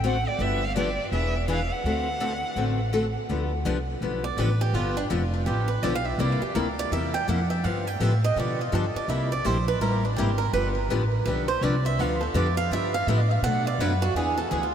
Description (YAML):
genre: acoustic string swing (jazz manouche)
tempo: 166 BPM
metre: 4/4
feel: swing 63% on 8ths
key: G mixolydian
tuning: A4 = 440 Hz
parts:
  - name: picked steel-string acoustic guitar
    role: accompaniment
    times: 0.0-14.6 s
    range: B2 to A4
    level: -28 LUFS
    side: left 3 dB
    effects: lush chorus
  - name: upright bass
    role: bass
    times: 0.0-14.7 s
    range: E1 to B2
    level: -26 LUFS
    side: equal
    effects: none
  - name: warm violin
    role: melody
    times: 0.1-2.9 s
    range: D5 to F#5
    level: -31 LUFS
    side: right 1 dB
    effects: ping-pong delay
  - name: picked swing-style acoustic guitar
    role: second line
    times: 4.2-14.7 s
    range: D4 to G5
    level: -27 LUFS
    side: right 4 dB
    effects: ping-pong delay
room: moderate huge ambient reverb, RT60 7.5 s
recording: dreamy mix soaked in reverb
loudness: -23 LUFS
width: side -9 dB against mid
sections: 0.0-3.3 A section; 3.3-14.7 B section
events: steel-string acoustic guitar solo 3.3-14.7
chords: 0.4 G7; 1.1 E7; 1.8 D7; 3.3 G7; 6.2 C7; 7.6 G7; 9.1 C7; 10.5 G7; 13.4 Bm7; 14.2 E7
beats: 0.03 | 0.39 0.75 1.11 1.48 | 1.84 2.20 2.56 2.92 | 3.28 3.65 4.01 4.37 | 4.73 5.09 5.46 5.82 | 6.18 6.54 6.91 7.27 | 7.63 8.00 8.36 8.72 | 9.08 9.45 9.81 10.17 | 10.53 10.90 11.26 11.62 | 11.98 12.35 12.71 13.07 | 13.43 13.80 14.16 14.52